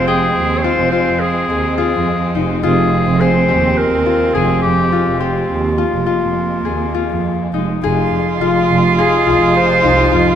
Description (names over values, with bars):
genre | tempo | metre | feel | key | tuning
contemporary instrumental, chamber music in an uneven meter | 210 BPM (eighths) | 9/8 | straight | F minor | A4 = 439 Hz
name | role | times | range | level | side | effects
warm clarinet | melody | 0.0-10.4 s | F4 to Db5 | -18 LUFS | left 2 dB | none
warm cello | second line | 0.0-10.4 s | Ab3 to F4 | -19 LUFS | right 6 dB | none
dark studio string section | sustained chords | 0.0-10.4 s | F3 to Eb4 | -26 LUFS | left 2 dB | none
concert harp | arpeggios | 0.0-10.4 s | Eb4 to G5 | -19 LUFS | left 8 dB | none
rich double bass | bass | 0.0-10.4 s | F1 to F2 | -18 LUFS | right 4 dB | none
room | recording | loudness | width
wet recital hall reverb, RT60 1.6 s | none | -12 LUFS | side -9 dB against mid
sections
0.0-7.8 A section; 7.8-10.4 B section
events
none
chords
0.0 Fm; 7.8 Fm7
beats
| 0.08 0.36 0.65 0.93 1.21 1.50 1.78 2.07 2.35 | 2.64 2.92 3.21 3.49 3.78 4.07 4.35 4.64 4.92 | 5.21 5.50 5.79 6.07 6.36 6.65 6.95 7.24 7.54 | 7.83 8.12 8.41 8.70 8.99 9.27 9.56 9.84 10.12